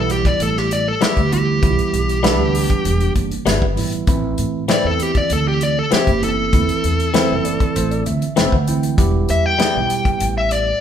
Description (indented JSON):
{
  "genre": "straight-eighth soul blues",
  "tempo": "98 BPM",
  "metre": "4/4",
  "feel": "straight",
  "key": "E minor",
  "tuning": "A4 = 439 Hz",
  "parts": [
    { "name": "smooth overdriven lead guitar", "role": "melody", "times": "0.0-10.8 s", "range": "G4 to G5", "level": "-20 LUFS", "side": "left 1 dB", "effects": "none" },
    { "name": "tine electric piano", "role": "accompaniment", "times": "0.0-10.7 s", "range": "E3 to G5", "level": "-23 LUFS", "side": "right 6 dB", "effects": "none" },
    { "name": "upright bass", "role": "bass", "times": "0.0-10.7 s", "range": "E1 to A2", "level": "-21 LUFS", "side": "right 1 dB", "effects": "none" },
    { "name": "warm soul drum kit", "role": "drums", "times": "0.1-10.7 s", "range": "hi-hat, kick drum, snare drum", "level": "-20 LUFS", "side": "left 1 dB", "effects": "none" },
    { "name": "direct-recorded clean electric guitar", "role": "stabs", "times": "1.0-9.8 s", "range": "E3 to E4", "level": "-22 LUFS", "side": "left 4 dB", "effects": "none" }
  ],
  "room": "moderate large studio reverb, RT60 1.1 s",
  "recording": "band playing live in one room",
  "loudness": "-15 LUFS",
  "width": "side -9 dB against mid",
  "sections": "0.0-10.8 A section",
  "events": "tine electric piano fill 7.1-9.0",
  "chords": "0.0 Em; 4.1 Am; 9.0 Em"
}